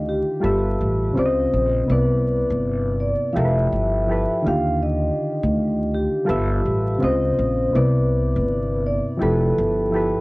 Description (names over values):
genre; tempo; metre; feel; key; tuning
lo-fi hip hop; 82 BPM; 4/4; swing 66% on 16ths; C major; A4 = 436 Hz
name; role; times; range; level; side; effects
vibraphone with soft mallets; melody; 0.0-10.2 s; G4 to F5; -23 LUFS; equal; low-pass filter, tape echo
soft electric-piano-like synth keys; accompaniment; 0.0-10.2 s; C3 to E5; -23 LUFS; equal; chorus, cassette tape, low-pass filter
upright bass; bass; 0.0-10.1 s; F1 to Eb2; -22 LUFS; equal; none
room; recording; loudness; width
light reverb; worn, warbling old tape, cassette tape, vinyl crackle, warbly pitch drift; -18 LUFS; side -22 dB against mid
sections
0.0-10.2 A section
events
none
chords
0.4 G13; 1.2 Dbmaj9; 1.9 Cmaj9; 3.4 Fmaj9#11; 4.4 Ebmaj9; 6.3 G13; 7.0 Dbmaj9; 7.7 Cmaj9; 9.2 Fmaj9#11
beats
0.42 1.16 | 1.89 2.62 3.35 4.08 | 4.82 5.55 6.28 7.01 | 7.74 8.47 9.21 9.94